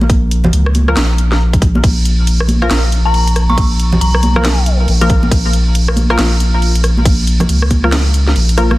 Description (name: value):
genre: deep dubstep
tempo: 138 BPM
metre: 4/4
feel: swing 62% on 16ths, half-time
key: Bb phrygian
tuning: A4 = 437 Hz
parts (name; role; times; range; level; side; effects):
- soft dub sub bass; bass; 0.0-8.8 s; Bb1 to Db2; -12 LUFS; equal; none
- congas; percussion; 0.0-8.8 s; none; -20 LUFS; right 1 dB; none
- electronic kick drum; drums; 0.1-7.8 s; none; -13 LUFS; equal; none
- garage drum kit; drums; 0.1-8.8 s; crash cymbal, hi-hat, rim click, snare drum; -19 LUFS; right 1 dB; none
- filtered dub chord stab; stabs; 0.9-8.7 s; F3 to Bb4; -20 LUFS; left 1 dB; analog chorus, dub echo
- dark detuned synth bell; melody; 3.1-4.6 s; Bb5 to Db6; -20 LUFS; left 2 dB; chorus, phaser, dub echo
room: light reverb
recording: dense, heavily limited modern master, vinyl crackle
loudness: -10 LUFS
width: side -18 dB against mid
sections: 0.0-8.8 A section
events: drop 0.0-8.8; kick drops out 8.4-8.8; drum fill 8.6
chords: 0.0 Bb5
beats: | 0.10 0.53 0.97 1.40 | 1.83 2.27 2.71 3.14 | 3.58 4.01 4.44 4.88 | 5.31 5.75 6.18 6.62 | 7.05 7.49 7.92 8.36